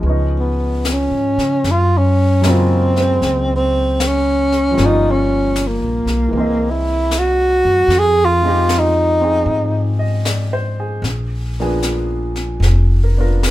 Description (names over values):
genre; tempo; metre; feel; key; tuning
jazz ballad; 76 BPM; 4/4; swing 69% on 8ths; unclear; A4 = 439 Hz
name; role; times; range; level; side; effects
warm baby grand piano; accompaniment; 0.0-13.5 s; Db3 to D#5; -22 LUFS; equal; none
upright bass; bass; 0.0-13.5 s; F1 to Db3; -18 LUFS; equal; none
jazz brush drum kit; drums; 0.0-13.5 s; brushed snare drum, hi-hat, snare drum; -26 LUFS; left 3 dB; none
breathy tenor saxophone; melody; 0.4-10.1 s; Bb3 to Ab4; -15 LUFS; equal; none
room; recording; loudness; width
moderate club reverb, RT60 0.7 s; minimal, uncompressed stereo recording; -13 LUFS; side -15 dB against mid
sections
0.0-13.5 A section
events
tenor saxophone solo 0.0-13.5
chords
0.0 Db7; 1.6 Gbmaj9; 4.8 Gm7b5; 6.3 C7alt; 7.9 Fm9; 11.0 Bb7b9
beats
0.04 0.84 | 1.65 2.43 3.22 4.00 | 4.78 5.56 6.34 7.12 | 7.90 8.69 9.47 10.25 | 11.04 11.83 12.63 13.44